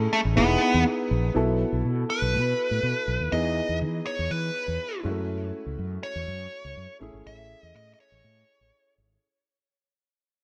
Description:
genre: 1980s-style pop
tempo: 122 BPM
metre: 4/4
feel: straight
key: B mixolydian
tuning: A4 = 440 Hz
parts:
  - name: warm concert grand piano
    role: accompaniment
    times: 0.0-9.2 s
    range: G#3 to B4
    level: -32 LUFS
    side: equal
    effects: none
  - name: fretless electric bass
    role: bass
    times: 0.0-9.2 s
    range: E1 to E3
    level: -30 LUFS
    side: equal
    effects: none
  - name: nasal lead guitar with a parked wah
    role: melody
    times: 0.1-8.9 s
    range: A3 to E5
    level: -29 LUFS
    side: equal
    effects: overdrive, digital delay
room: light reverb, small room ambience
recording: none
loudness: -26 LUFS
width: mono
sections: 0.0-1.4 A section; 1.4-9.2 B section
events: fade-out 1.4-9.2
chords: 0.4 Emaj7; 1.4 B7sus4; 3.3 Emaj7; 5.0 F#m7; 7.0 Amaj7

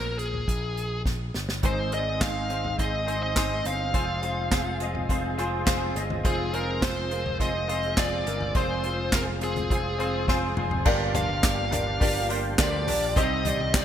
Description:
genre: piano-driven pop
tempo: 104 BPM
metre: 4/4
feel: straight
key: unclear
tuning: A4 = 441 Hz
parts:
  - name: bluesy overdriven lead guitar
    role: melody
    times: 0.0-13.8 s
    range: Ab4 to F5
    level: -30 LUFS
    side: equal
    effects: distortion
  - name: modern bright picked electric bass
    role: bass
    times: 0.0-13.8 s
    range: F1 to D2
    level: -32 LUFS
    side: equal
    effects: none
  - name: unplugged drum kit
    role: drums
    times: 0.2-13.8 s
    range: crash cymbal, handclaps, hi-hat, kick drum, snare drum, toms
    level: -27 LUFS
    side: equal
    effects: none
  - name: bright concert grand piano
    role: accompaniment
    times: 1.6-13.8 s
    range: G2 to Eb5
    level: -30 LUFS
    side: left 2 dB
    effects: ensemble chorus
  - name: mellow tonewheel organ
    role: sustained chords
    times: 1.6-10.8 s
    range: Ab3 to F4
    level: -39 LUFS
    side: left 1 dB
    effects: chorus vibrato, stopped rotary speaker
  - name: direct-recorded clean electric guitar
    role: riff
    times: 1.6-13.8 s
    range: G2 to Ab4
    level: -35 LUFS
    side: right 7 dB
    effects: ensemble chorus
room: moderate plate reverb, RT60 2.0 s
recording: bright 1980s-style digital production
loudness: -24 LUFS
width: side -10 dB against mid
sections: 0.0-10.9 A section; 10.9-13.8 B section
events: drum fill 1.1-1.6, 10.3-10.9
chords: 0.0 N.C.; 1.6 Ab; 3.9 Fm; 10.9 Gm7; 13.2 Cm

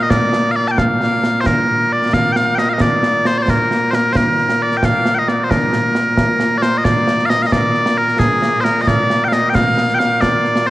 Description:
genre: scottish traditional, Scottish pipe music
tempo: 89 BPM (dotted quarters)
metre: 6/8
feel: straight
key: Bb major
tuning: A4 = 440 Hz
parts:
  - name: loud bright bagpipes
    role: melody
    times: 0.0-10.7 s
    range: Bb2 to A5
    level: -14 LUFS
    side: equal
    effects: none
  - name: concert snare drum and concert bass drum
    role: drums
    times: 0.1-10.7 s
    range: none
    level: -18 LUFS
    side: right 1 dB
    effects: none
room: wet concert hall reverb, RT60 2.6 s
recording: worn, warbling old tape, cassette tape, warbly pitch drift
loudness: -13 LUFS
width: side -16 dB against mid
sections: 0.0-6.9 A section; 6.9-10.7 B section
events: none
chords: none

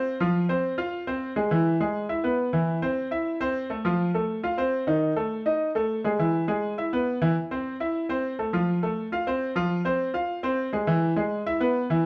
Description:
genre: latin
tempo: 205 BPM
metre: 4/4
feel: straight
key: A minor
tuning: A4 = 440 Hz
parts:
  - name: clear grand piano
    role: solo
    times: 0.0-12.1 s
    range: D#3 to F5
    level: -26 LUFS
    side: equal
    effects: none
room: wet studio reverb, RT60 0.7 s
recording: heard from further back in the room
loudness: -26 LUFS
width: mono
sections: 0.0-7.4 A section; 7.4-12.1 A section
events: none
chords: 0.3 Fm; 1.5 E; 2.7 Am; 3.8 F; 5.0 D#sus4; 6.2 E; 7.4 Am; 8.5 F; 9.7 Fm; 10.9 E

